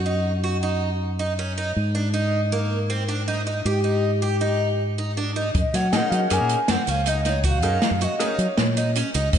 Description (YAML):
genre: progressive instrumental, band music in an uneven meter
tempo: 158 BPM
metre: 5/4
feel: straight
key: unclear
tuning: A4 = 441 Hz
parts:
  - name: fingered electric bass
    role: bass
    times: 0.0-9.4 s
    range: Db2 to Gb3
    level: -24 LUFS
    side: equal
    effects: none
  - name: picked twelve-string acoustic guitar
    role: arpeggios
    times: 0.1-9.3 s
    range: Bb3 to G4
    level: -25 LUFS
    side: right 1 dB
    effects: slapback echo
  - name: open jazz drum kit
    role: drums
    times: 5.5-9.4 s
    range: hi-hat, kick drum, snare drum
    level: -24 LUFS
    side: equal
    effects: none
  - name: mellow hollow wooden flute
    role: melody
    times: 5.6-9.4 s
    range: C5 to Ab5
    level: -26 LUFS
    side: equal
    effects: slapback echo
  - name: bright grand piano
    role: accompaniment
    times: 5.9-8.3 s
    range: Db4 to Bb4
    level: -30 LUFS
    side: left 5 dB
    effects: slapback echo
room: moderate lush hall reverb, RT60 2.0 s, small room ambience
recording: big arena sound, nothing above 10.7 kHz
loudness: -20 LUFS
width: side -8 dB against mid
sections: 0.0-5.5 A section; 5.5-9.4 B section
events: none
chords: 0.0 Gb5; 1.8 Ab5; 5.5 Gb6